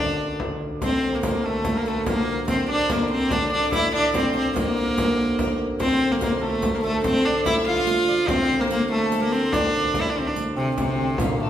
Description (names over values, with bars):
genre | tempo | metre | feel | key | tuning
medieval dance | 96 BPM (dotted quarters) | 6/8 | straight | D minor | A4 = 444 Hz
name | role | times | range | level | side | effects
bright viola da gamba | melody | 0.0-11.5 s | A2 to F4 | -22 LUFS | equal | none
clear fiddle | second line | 0.0-11.5 s | A3 to F5 | -30 LUFS | left 4 dB | none
hammered dulcimer | second line | 0.0-11.5 s | A3 to F5 | -29 LUFS | right 2 dB | none
pedal harmonium | drone | 0.0-11.5 s | D2 | -31 LUFS | equal | none
frame drum | percussion | 0.4-11.4 s | none | -29 LUFS | left 1 dB | none
riq | percussion | 0.8-11.4 s | none | -34 LUFS | right 3 dB | none
room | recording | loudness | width
wet recital hall reverb, RT60 1.4 s | recorded in a church or concert hall | -20 LUFS | side -10 dB against mid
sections
0.8-10.8 A section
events
none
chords
none